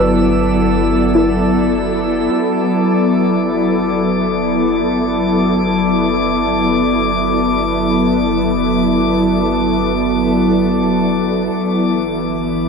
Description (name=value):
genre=ambient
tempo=free time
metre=none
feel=none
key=G major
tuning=A4 = 441 Hz
part: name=glassy FM pad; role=sustained chords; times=0.0-12.7 s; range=E3 to D5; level=-14 LUFS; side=equal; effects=ensemble chorus, built-in reverb
part: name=soft round pluck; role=arpeggios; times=0.0-2.6 s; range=E4 to B4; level=-20 LUFS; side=left 1 dB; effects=chorus, analog delay
part: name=warm sub bass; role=bass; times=0.0-12.7 s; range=G1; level=-27 LUFS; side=equal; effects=none
part: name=drifting glass-harmonics texture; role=texture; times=0.0-12.7 s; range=D6 to E6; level=-23 LUFS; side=left 6 dB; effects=chorus, built-in reverb
room=wet plate reverb, RT60 3.0 s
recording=echo-heavy mix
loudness=-13 LUFS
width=side -5 dB against mid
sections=0.0-2.3 A section; 2.3-12.7 B section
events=fade-in on sub bass 2.3-12.7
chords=0.0 Gmaj9; 11.5 Dsus2/G